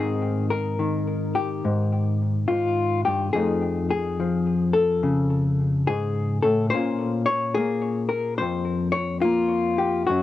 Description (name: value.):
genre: solo jazz.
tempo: 71 BPM.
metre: 4/4.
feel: swing 66% on 8ths, rubato.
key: unclear.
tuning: A4 = 440 Hz.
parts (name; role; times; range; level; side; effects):
hollow-body jazz guitar; solo; 0.0-10.2 s; F2 to Db5; -21 LUFS; left 2 dB; cassette tape.
room: wet booth ambience, RT60 0.2 s.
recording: home recording on cassette.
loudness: -21 LUFS.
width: side -13 dB against mid.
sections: 0.0-10.2 A section.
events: none.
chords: 0.0 Abmaj9; 3.3 F7alt; 6.7 Bbm7.